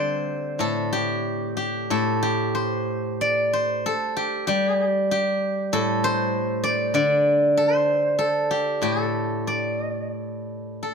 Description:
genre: chinese traditional, Chinese solo plucked strings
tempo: 86-101 BPM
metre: 4/4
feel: rubato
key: unclear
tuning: A4 = 438 Hz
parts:
  - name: steel-string zither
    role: solo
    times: 0.0-10.9 s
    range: A2 to D5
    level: -21 LUFS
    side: equal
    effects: none
room: light reverb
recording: close, detailed microphones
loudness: -21 LUFS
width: side -5 dB against mid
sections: 0.0-10.8 A section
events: none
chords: none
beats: | 0.61 1.27 1.92 2.57 | 3.22 3.87 4.50 5.13 | 5.75 6.36 6.96 7.58 | 8.20 8.83 9.47 10.14 | 10.82

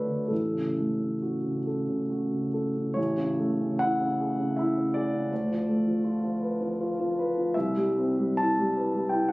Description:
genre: classical, impressionist solo piano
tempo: 64-83 BPM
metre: 3/4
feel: rubato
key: unclear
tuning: A4 = 438 Hz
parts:
  - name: warm concert grand piano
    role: solo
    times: 0.0-9.3 s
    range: A1 to A5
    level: -25 LUFS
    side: equal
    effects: none
room: light reverb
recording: recorded on a phone in the room, studio reverb, compression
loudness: -25 LUFS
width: side -21 dB against mid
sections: 0.0-3.0 A section; 3.0-9.3 A section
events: none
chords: 0.3 A6; 3.0 Amaj7; 5.3 Dm6; 7.5 Cmaj7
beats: | 0.30 1.22 2.11 | 2.97 3.81 4.57 | 5.31 6.04 6.78 | 7.55 8.37 9.11

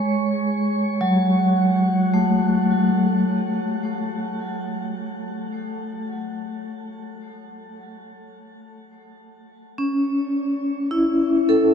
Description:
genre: ambient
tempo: 53 BPM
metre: 4/4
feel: straight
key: unclear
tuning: A4 = 440 Hz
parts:
  - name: vibraphone with medium mallets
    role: solo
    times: 0.0-11.7 s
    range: F#3 to C#5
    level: -20 LUFS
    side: equal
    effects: diffuse ambient delay
room: wet shimmer reverb, RT60 8.1 s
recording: none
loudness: -19 LUFS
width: side -7 dB against mid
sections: 0.0-3.3 A section; 3.3-11.7 B section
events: none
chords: 0.0 F#madd9; 3.3 F#m (rootless)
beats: 1.00 2.13 | 3.27 4.40 5.53 6.66 | 7.79 8.93 10.06 11.19

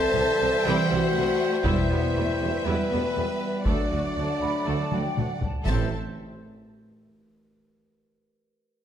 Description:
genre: cinematic, epic orchestral film score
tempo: 119 BPM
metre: 4/4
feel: straight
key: A dorian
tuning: A4 = 440 Hz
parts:
  - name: bright symphonic violin section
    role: melody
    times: 0.0-6.0 s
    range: B4 to A5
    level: -34 LUFS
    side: left 4 dB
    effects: none
  - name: warm symphonic violin section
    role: second line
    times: 0.0-5.9 s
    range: A4 to F#5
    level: -33 LUFS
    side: left 3 dB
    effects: none
  - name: mellow French horn section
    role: sustained chords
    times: 0.0-5.9 s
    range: A3 to A4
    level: -29 LUFS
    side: left 4 dB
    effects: none
  - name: warm trombone section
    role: sustained chords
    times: 0.0-5.9 s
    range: E3 to A3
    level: -35 LUFS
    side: right 4 dB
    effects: none
  - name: clear trumpet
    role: stabs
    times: 0.0-5.9 s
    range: B4 to D5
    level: -31 LUFS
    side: right 1 dB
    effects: none
  - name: rich symphonic cello section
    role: bass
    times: 0.0-6.0 s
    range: A2 to C4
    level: -33 LUFS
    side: right 4 dB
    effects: none
  - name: warm tuba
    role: bass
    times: 0.1-5.9 s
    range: E1 to D2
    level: -35 LUFS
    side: right 3 dB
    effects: none
  - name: taiko ensemble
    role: drums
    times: 0.1-6.6 s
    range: none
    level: -29 LUFS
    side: equal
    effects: none
  - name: clear symphonic viola section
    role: accompaniment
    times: 0.2-6.0 s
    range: G3 to A4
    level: -34 LUFS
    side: right 1 dB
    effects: none
  - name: clear symphonic double bass section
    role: bass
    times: 0.2-6.0 s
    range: A1 to E2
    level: -33 LUFS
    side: right 4 dB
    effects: none
  - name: timpani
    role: percussion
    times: 1.6-2.4, 5.7-5.9 s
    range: E2 to A2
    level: -31 LUFS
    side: left 1 dB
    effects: none
  - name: large flute ensemble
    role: second line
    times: 4.2-5.7 s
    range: F#5 to B5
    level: -34 LUFS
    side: right 2 dB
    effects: none
room: wet recital hall reverb, RT60 1.7 s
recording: none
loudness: -22 LUFS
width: side -9 dB against mid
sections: 0.0-5.7 A section; 5.7-7.7 B section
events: drum fill 4.9-5.7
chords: 0.0 C; 1.6 Em; 3.7 D; 5.7 Am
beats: 0.14 0.64 1.14 | 1.65 2.15 2.65 3.15 | 3.66 4.16 4.67 5.17 | 5.67 6.18

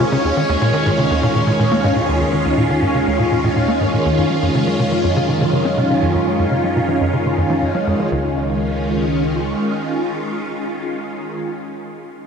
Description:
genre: ambient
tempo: 122 BPM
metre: 4/4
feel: straight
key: Db major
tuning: A4 = 440 Hz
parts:
  - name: phased string machine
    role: sustained chords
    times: 0.0-11.5 s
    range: Eb3 to F4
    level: -18 LUFS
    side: equal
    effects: ensemble chorus, phaser
  - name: tight sequencer bass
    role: riff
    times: 0.0-8.3 s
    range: Db2 to Db4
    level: -20 LUFS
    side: equal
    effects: wide subtle chorus, ping-pong delay
  - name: fat analog bass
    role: bass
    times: 0.0-9.5 s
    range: Db2 to Gb2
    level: -27 LUFS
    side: equal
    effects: none
  - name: bubbling stepped-filter texture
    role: texture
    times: 0.0-8.1 s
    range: Db4 to Db5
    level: -25 LUFS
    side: right 1 dB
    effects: chorus, built-in reverb
room: wet huge ambient reverb, RT60 7.5 s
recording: dreamy mix soaked in reverb, cassette tape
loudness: -15 LUFS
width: side -6 dB against mid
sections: 0.0-8.1 A section; 8.1-12.0 B section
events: filter sweep on analog synth bass 0.0-8.1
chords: 0.2 Eb5; 4.2 Gb5; 8.1 Db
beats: | 0.24 0.74 1.23 1.72 | 2.21 2.70 3.19 3.69 | 4.18 4.67 5.16 5.65 | 6.15 6.64 7.13 7.62 | 8.11 8.61 9.10 9.59 | 10.08 10.57 11.06

